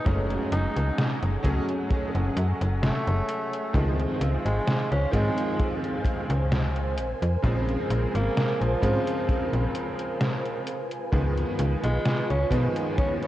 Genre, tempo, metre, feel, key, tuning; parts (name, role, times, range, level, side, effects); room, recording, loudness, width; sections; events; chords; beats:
vaporwave; 65 BPM; 4/4; straight; Db major; A4 = 440 Hz
growling tenor saxophone; melody; 0.0-13.3 s; F3 to Eb4; -32 LUFS; equal; tape echo
bright electric grand piano; accompaniment; 0.0-13.3 s; Db3 to Ab4; -30 LUFS; right 1 dB; ensemble chorus, diffuse ambient delay
soft string machine; sustained chords; 0.0-13.3 s; F4 to Ab5; -35 LUFS; equal; ensemble chorus
slap-like FM bass; bass; 0.1-12.7 s; Gb1 to Cb3; -25 LUFS; equal
detuned 8-bit digital drum machine; drums; 0.1-13.3 s; hi-hat, snare drum; -30 LUFS; equal; overdrive
kick drum; drums; 0.1-13.2 s; -30 LUFS; equal
moderate lush hall reverb, RT60 2.6 s; dreamy mix soaked in reverb, cassette tape, nothing above 10.4 kHz; -23 LUFS; side -14 dB against mid
0.0-13.3 A section
0.1 Gbmadd9; 3.8 Dbmaj7; 7.0 Bbm9; 10.7 Db7
| 0.06 0.98 1.91 2.83 | 3.75 4.67 5.60 6.52 | 7.44 8.37 9.29 10.21 | 11.14 12.06 12.98